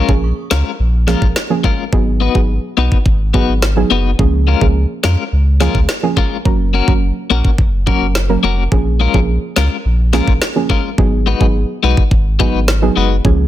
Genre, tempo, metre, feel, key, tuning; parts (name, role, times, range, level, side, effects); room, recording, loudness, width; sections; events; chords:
dancehall; 106 BPM; 4/4; straight; A4 = 440 Hz
clean electric guitar; arpeggios; 0.0-13.2 s; Ab3 to Cb5; -18 LUFS; left 9 dB; tremolo
warm sub bass; bass; 0.0-13.5 s; F1 to F2; -15 LUFS; equal
soft round pluck; accompaniment; 0.1-13.4 s; F3 to Bb4; -18 LUFS; right 4 dB; chorus
island pop drum kit; drums; 0.1-13.4 s; kick drum, rim click, snare drum; -15 LUFS; equal
light reverb; dense, heavily limited modern master; -12 LUFS; side -13 dB against mid
0.0-13.5 A section
0.0 Bbm7; 1.9 Abm7; 4.2 Db6; 6.5 Gb; 8.7 Bbm7; 11.0 Abm7